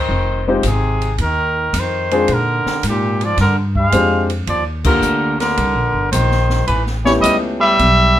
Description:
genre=jazz, small-group swing and bop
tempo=109 BPM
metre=4/4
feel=swing 69% on 8ths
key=unclear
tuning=A4 = 442 Hz
part: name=warm trumpet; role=melody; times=0.0-8.2 s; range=G4 to F5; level=-18 LUFS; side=left 1 dB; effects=none
part: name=trombone with metal mute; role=second line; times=0.0-8.2 s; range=Bb2 to Ab3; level=-22 LUFS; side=right 4 dB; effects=none
part: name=upright bass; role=bass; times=0.1-8.2 s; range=F1 to Bb2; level=-19 LUFS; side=equal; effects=none
part: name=warm grand piano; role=accompaniment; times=0.5-7.8 s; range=Ab3 to Ab4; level=-18 LUFS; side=left 2 dB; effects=none
part: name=open jazz drum kit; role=drums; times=0.6-8.0 s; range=crash cymbal, hi-hat, kick drum, ride cymbal, snare drum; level=-25 LUFS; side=equal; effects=none
room=moderate studio reverb, RT60 0.5 s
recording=minimal, uncompressed stereo recording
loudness=-14 LUFS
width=side -12 dB against mid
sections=0.0-8.2 A section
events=band accent 4.8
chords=0.1 Fm7; 2.3 Bb13; 4.5 Ebmaj9; 6.7 A9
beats=| 0.09 0.64 1.19 1.73 | 2.28 2.83 3.38 3.93 | 4.48 5.03 5.58 6.13 | 6.68 7.23 7.78

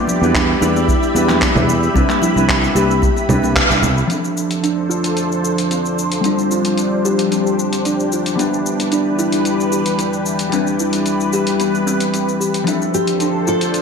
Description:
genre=sunset chillout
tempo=112 BPM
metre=4/4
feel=straight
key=D dorian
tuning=A4 = 441 Hz
part: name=mellow electric guitar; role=accompaniment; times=0.0-13.8 s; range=F3 to E5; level=-20 LUFS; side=moving between left 5 dB and right 4 dB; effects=auto-pan, low-pass filter, ping-pong delay
part: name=lush unison pad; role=sustained chords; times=0.0-13.8 s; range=E3 to B5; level=-21 LUFS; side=equal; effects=chorus, phaser
part: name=kalimba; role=arpeggios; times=0.0-13.7 s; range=B3 to B4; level=-22 LUFS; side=right 2 dB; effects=low-pass filter, ping-pong delay
part: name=dusty soul sampler-style drum kit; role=drums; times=0.1-13.8 s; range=congas, handclaps, hi-hat, shaker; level=-21 LUFS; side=equal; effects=gated reverb
part: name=congas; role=percussion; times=0.1-3.5 s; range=none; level=-26 LUFS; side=left 3 dB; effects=none
part: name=sustaining fretless electric bass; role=bass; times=0.2-4.0 s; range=C2 to E2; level=-18 LUFS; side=equal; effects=none
part: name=electronic kick drum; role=drums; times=0.3-3.7 s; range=none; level=-20 LUFS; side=equal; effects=none
part: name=nylon-string guitar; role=melody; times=12.9-13.8 s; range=G4 to A4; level=-19 LUFS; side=left 3 dB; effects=wide subtle chorus
room=wet lush hall reverb, RT60 2.1 s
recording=bright 1980s-style digital production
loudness=-14 LUFS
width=side -6 dB against mid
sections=0.0-4.1 A section; 4.1-13.8 B section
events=band accent 3.6; filter sweep on clean electric guitar 4.1-13.8; filter sweep on kalimba 4.1-13.8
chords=0.0 Em7; 2.0 Cmaj7; 4.1 Dm7; 6.2 G7sus4; 8.4 Em7; 10.5 Cmaj7; 12.7 Dm7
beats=0.35 0.88 1.42 | 1.95 2.49 3.02 3.56 | 4.10 4.63 5.17 5.70 | 6.24 6.78 7.31 7.85 | 8.38 8.92 9.45 9.99 | 10.53 11.06 11.60 12.13 | 12.67 13.20 13.74

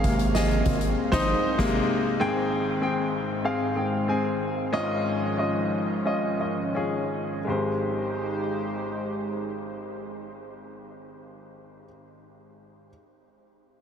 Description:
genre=piano-driven pop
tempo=82-97 BPM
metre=4/4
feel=straight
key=Ab major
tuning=A4 = 440 Hz
part: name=clear baby grand piano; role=accompaniment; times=0.0-12.9 s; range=Ab1 to Ab5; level=-26 LUFS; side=left 1 dB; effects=none
part: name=lush unison pad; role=sustained chords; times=0.0-11.1 s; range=Ab2 to C5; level=-31 LUFS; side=right 1 dB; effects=chorus
part: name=round analog bass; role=bass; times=0.0-1.8 s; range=Ab1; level=-27 LUFS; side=equal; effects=none
part: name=soft-mallet drum kit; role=drums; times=0.0-1.8 s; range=crash cymbal, hi-hat, kick drum, snare drum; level=-29 LUFS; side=equal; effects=none
part: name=tambourine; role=percussion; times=0.3-0.5 s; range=none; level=barely audible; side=none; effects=none
room=wet huge ambient reverb, RT60 9.4 s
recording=dreamy mix soaked in reverb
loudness=-24 LUFS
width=side -8 dB against mid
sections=0.0-2.2 A section; 2.2-7.5 B section; 7.5-10.4 C section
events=grand piano solo 0.0-2.2; band accent 1.0-2.2; slowing down 2.2-7.5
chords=0.0 Abadd9; 2.2 Abmaj7; 4.7 Dbadd9/Ab; 7.5 Abmaj7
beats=0.35 0.97 1.59 | 2.21 2.83 3.45 4.08 | 4.73 5.39 6.06 6.75 | 7.47 8.20 8.93 9.65

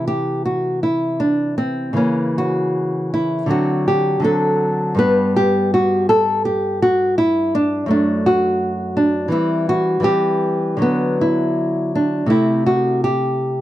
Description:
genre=classical, baroque-style dance for nylon-string guitar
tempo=82 BPM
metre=4/4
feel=rubato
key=G major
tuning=A4 = 439 Hz
part: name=nylon-string guitar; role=solo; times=0.0-13.6 s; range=F#2 to B4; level=-16 LUFS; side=equal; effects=none
room=light reverb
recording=dry, close 1970s-style studio recording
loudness=-15 LUFS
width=side -14 dB against mid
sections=0.0-13.6 A section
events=none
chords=0.0 Am/C; 2.0 F#7/C#; 3.5 D7; 5.0 G; 7.9 F#m; 9.3 C/E; 10.8 D69; 12.3 Am/C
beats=0.45 1.20 | 1.98 2.77 3.51 4.25 | 5.00 5.74 6.46 7.19 | 7.91 8.62 9.33 10.07 | 10.82 11.58 12.31 13.04

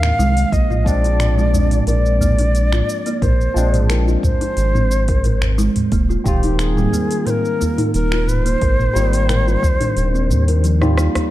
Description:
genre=organic downtempo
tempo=89 BPM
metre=4/4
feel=straight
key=Bb mixolydian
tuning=A4 = 440 Hz
part: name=Native American-style cedar flute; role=melody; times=0.0-10.6 s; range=G4 to F5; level=-22 LUFS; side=equal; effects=ping-pong delay
part: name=barky tine electric piano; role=accompaniment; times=0.0-11.3 s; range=Eb3 to F4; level=-25 LUFS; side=left 2 dB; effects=overdrive, phaser, sidechain pumping
part: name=kalimba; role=arpeggios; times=0.0-11.1 s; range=F3 to Bb4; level=-23 LUFS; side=right 1 dB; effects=vintage 12-bit sampler grit, ping-pong delay
part: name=round analog bass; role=bass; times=0.0-11.1 s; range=Eb1 to Eb2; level=-17 LUFS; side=equal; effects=none
part: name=afro-pop drum kit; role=drums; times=0.0-11.3 s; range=finger snaps, hi-hat, rim click, shaker, toms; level=-24 LUFS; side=right 1 dB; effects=studio reverb
part: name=electronic kick drum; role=drums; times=0.5-9.8 s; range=none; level=-19 LUFS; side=equal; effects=studio reverb
part: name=udu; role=percussion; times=1.5-11.3 s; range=none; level=-23 LUFS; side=left 1 dB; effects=none
room=light reverb, digital ambience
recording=dark, warm production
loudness=-14 LUFS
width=side -15 dB against mid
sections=0.0-11.3 A section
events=kick drops out 10.0-11.3; drum fill 10.8-11.3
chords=0.0 Ab; 0.5 Bb9; 5.9 Eb5; 8.6 Abmaj7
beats=| 0.53 1.20 1.88 2.55 | 3.22 3.90 4.57 5.25 | 5.92 6.59 7.27 7.94 | 8.62 9.29 9.96 10.64

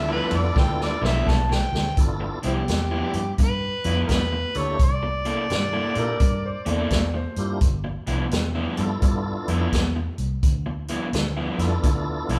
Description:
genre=electric blues shuffle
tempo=85 BPM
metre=4/4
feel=swing 65% on 8ths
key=G mixolydian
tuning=A4 = 440 Hz
part: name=overdriven harmonica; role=melody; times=0.0-6.9 s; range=C4 to A5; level=-30 LUFS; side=equal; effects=none
part: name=tonewheel organ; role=accompaniment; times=0.0-12.4 s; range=Bb3 to A4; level=-33 LUFS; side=equal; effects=slow rotary speaker, chorus vibrato
part: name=vintage muted fingered electric bass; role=bass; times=0.0-12.4 s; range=G1 to Bb2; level=-28 LUFS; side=equal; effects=none
part: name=raw garage guitar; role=riff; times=0.1-12.4 s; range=G2 to A4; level=-32 LUFS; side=equal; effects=overdrive
part: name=vintage drum kit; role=drums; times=0.3-12.4 s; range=hi-hat, kick drum, ride cymbal, snare drum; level=-26 LUFS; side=equal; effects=none
part: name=warm upright piano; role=second line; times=6.0-7.6 s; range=Bb4 to D5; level=-34 LUFS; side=equal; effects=none
room=moderate large studio reverb, RT60 1.2 s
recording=band playing live in one room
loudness=-23 LUFS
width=mono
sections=0.0-2.0 A section; 2.0-12.4 B section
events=harmonica solo 0.0-2.0; drum fill 0.6-2.0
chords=0.0 G13; 4.8 C13; 7.6 G13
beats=0.57 1.27 | 1.98 2.68 3.39 4.09 | 4.80 5.50 6.21 6.91 | 7.62 8.32 9.03 9.73 | 10.43 11.14 11.84

